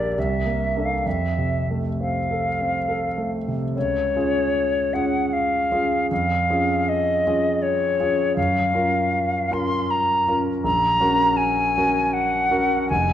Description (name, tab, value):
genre	classical, romantic duo for flute and grand piano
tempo	63-82 BPM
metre	3/4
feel	rubato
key	F major, Db major from 3.8 s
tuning	A4 = 440 Hz
part	silver concert flute	melody	0.0-13.1 s	Db5 to C6	-21 LUFS	left 1 dB	none
part	clear grand piano	accompaniment	0.0-13.1 s	F1 to Bb4	-23 LUFS	right 1 dB	none
room	wet recital hall reverb, RT60 1.5 s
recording	none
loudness	-19 LUFS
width	side -10 dB against mid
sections	0.0-3.8 A section; 3.8-13.1 B section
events	none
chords	0.2 C13; 1.0 F; 3.8 Db; 6.1 Db/F; 8.4 Gbmaj7; 10.6 Gb/Bb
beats	0.16 | 1.05 1.99 2.88 | 3.75 4.55 5.32 | 6.10 6.87 7.62 | 8.37 9.13 9.90 | 10.65 11.39 12.14 | 12.89